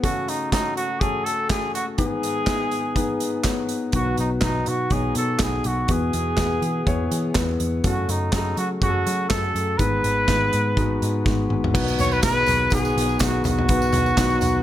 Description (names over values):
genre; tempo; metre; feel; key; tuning
piano-driven pop; 123 BPM; 4/4; swing 56% on 16ths; unclear; A4 = 440 Hz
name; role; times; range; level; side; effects
warm trumpet; melody; 0.0-14.6 s; D#4 to C#5; -24 LUFS; right 1 dB; none
warm grand piano; accompaniment; 0.0-14.6 s; G#2 to C#5; -25 LUFS; left 3 dB; none
loose indie drum kit; drums; 0.0-14.5 s; crash cymbal, handclaps, hi-hat, kick drum, snare drum, toms; -24 LUFS; right 1 dB; none
vintage muted picked electric bass; bass; 3.9-14.6 s; G#1 to F#3; -26 LUFS; equal; none
bright tonewheel organ; sustained chords; 11.7-14.6 s; D#3 to B3; -34 LUFS; right 1 dB; none
tambourine; percussion; 11.9-14.5 s; none; -37 LUFS; right 8 dB; none
room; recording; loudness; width
moderate large studio reverb, RT60 1.3 s, small room ambience; none; -19 LUFS; side -12 dB against mid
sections
0.0-11.7 A section; 11.7-14.6 B section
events
drum fill 11.3-11.7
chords
0.0 F#m; 2.0 G#m; 3.9 B; 5.9 E; 7.8 F#m; 9.8 G#m; 11.7 B